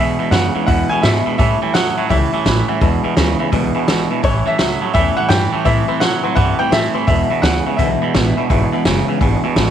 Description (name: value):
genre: rockabilly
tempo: 169 BPM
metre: 4/4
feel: swing 64% on 8ths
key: E mixolydian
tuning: A4 = 440 Hz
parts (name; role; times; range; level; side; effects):
- bright upright piano; melody; 0.0-8.4 s; C#5 to G#5; -20 LUFS; equal; none
- picked steel-string acoustic guitar; accompaniment; 0.0-9.7 s; E2 to E4; -23 LUFS; left 10 dB; none
- tack piano; accompaniment; 0.0-9.7 s; B4 to C6; -27 LUFS; left 12 dB; none
- twangy electric guitar; riff; 0.0-9.7 s; E2 to F#3; -19 LUFS; right 9 dB; none
- upright bass; bass; 0.0-9.7 s; F#1 to B2; -19 LUFS; equal; none
- vintage drum kit; drums; 0.3-9.7 s; hi-hat, kick drum, snare drum; -19 LUFS; equal; none
room: light reverb, studio ambience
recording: 1960s-style stereo with parts hard left and right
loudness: -13 LUFS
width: side -9 dB against mid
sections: 0.0-9.7 A section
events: none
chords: 0.0 E7; 1.4 A7; 2.8 E7; 4.2 A7; 5.7 Am7; 7.1 E7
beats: 0.32 0.67 1.03 | 1.38 1.74 2.10 2.45 | 2.81 3.17 3.52 3.88 | 4.23 4.59 4.94 5.30 | 5.66 6.01 6.37 6.72 | 7.08 7.43 7.79 8.14 | 8.50 8.85 9.21 9.56